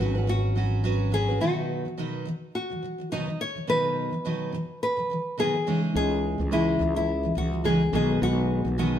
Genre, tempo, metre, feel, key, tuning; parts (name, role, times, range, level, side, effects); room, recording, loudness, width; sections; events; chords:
acoustic pop; 106 BPM; 4/4; swing 55% on 16ths; B major; A4 = 439 Hz
nylon-string guitar; melody; 0.0-9.0 s; D#4 to C#5; -28 LUFS; left 1 dB
picked steel-string acoustic guitar; accompaniment; 0.0-9.0 s; B2 to B4; -28 LUFS; right 1 dB
reed electric piano; accompaniment; 0.0-1.4, 5.9-9.0 s; B3 to D#5; -37 LUFS; left 5 dB
fretless electric bass; bass; 0.0-1.4, 6.0-9.0 s; G#1 to C#2; -26 LUFS; equal
moderate stone room reverb, RT60 1.2 s; band playing live in one room; -24 LUFS; side -10 dB against mid
0.0-1.4 A section; 1.4-9.0 B section
0.0 F#sus4; 1.4 B; 5.7 C#madd9; 7.9 G#m/B